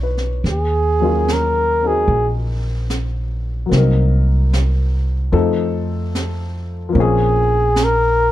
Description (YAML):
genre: jazz ballad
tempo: 74 BPM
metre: 4/4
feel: swing 69% on 8ths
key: unclear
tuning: A4 = 440 Hz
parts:
  - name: warm baby grand piano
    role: accompaniment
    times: 0.0-8.3 s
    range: F3 to D5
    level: -22 LUFS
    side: left 5 dB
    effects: none
  - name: upright bass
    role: bass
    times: 0.0-8.3 s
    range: Bb1 to F2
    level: -18 LUFS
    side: equal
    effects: none
  - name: jazz brush drum kit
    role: drums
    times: 0.2-8.3 s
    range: brushed snare drum, hi-hat, snare drum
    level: -27 LUFS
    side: right 3 dB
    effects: none
  - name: mellow flugelhorn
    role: melody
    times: 0.5-8.3 s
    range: Ab4 to Bb4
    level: -16 LUFS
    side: right 1 dB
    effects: none
room: little or no reverb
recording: dark, warm production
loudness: -15 LUFS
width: side -14 dB against mid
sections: 0.0-8.3 A section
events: flugelhorn solo 0.0-8.3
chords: 0.4 Ebm11; 3.7 Cm7b5; 5.3 F7; 7.0 Bbm9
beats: | 0.45 1.27 2.09 2.90 | 3.72 4.53 5.34 6.15 | 6.96 7.76